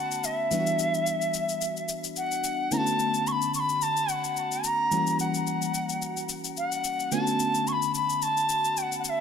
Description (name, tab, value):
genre	amapiano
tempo	109 BPM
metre	4/4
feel	swing 55% on 16ths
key	B minor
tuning	A4 = 443 Hz
part	bright reedy bansuri	melody	0.0-9.2 s	E5 to C#6	-26 LUFS	left 1 dB	ping-pong delay
part	FM electric piano	accompaniment	0.0-9.2 s	D3 to F#4	-31 LUFS	equal	chorus, phaser
part	shaker	drums	0.1-9.2 s	none	-34 LUFS	left 8 dB	soft clipping on snare
room	moderate concert hall reverb, RT60 2.1 s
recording	dense, heavily limited modern master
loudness	-25 LUFS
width	side -7 dB against mid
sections	0.0-9.2 A section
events	none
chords	0.0 Bm9; 0.5 Em9; 2.7 Bm9/D; 4.9 F#7b9; 7.1 Bm9